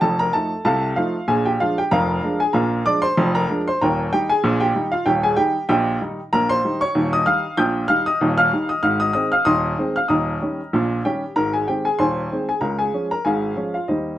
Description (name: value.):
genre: ragtime piano.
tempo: 95 BPM.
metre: 2/4.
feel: swing 55% on 16ths.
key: Eb major, Ab major from 6.3 s.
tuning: A4 = 441 Hz.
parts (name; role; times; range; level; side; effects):
warm upright piano; solo; 0.0-14.2 s; Eb1 to G6; -18 LUFS; equal; none.
room: moderate studio ambience, RT60 0.5 s.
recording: nothing above 10.5 kHz.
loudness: -17 LUFS.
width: side -13 dB against mid.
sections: 0.0-14.2 A section.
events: none.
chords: 0.0 F7; 1.3 Bb7; 3.8 Eb; 6.3 Eb7; 8.8 Ab; 10.1 Eb7; 11.4 Ab; 12.6 Db.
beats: | 0.03 0.66 | 1.29 1.92 | 2.55 3.18 | 3.81 4.44 | 5.07 5.70 | 6.32 6.95 | 7.58 8.21 | 8.84 9.47 | 10.10 10.73 | 11.36 11.99 | 12.62 13.26 | 13.89.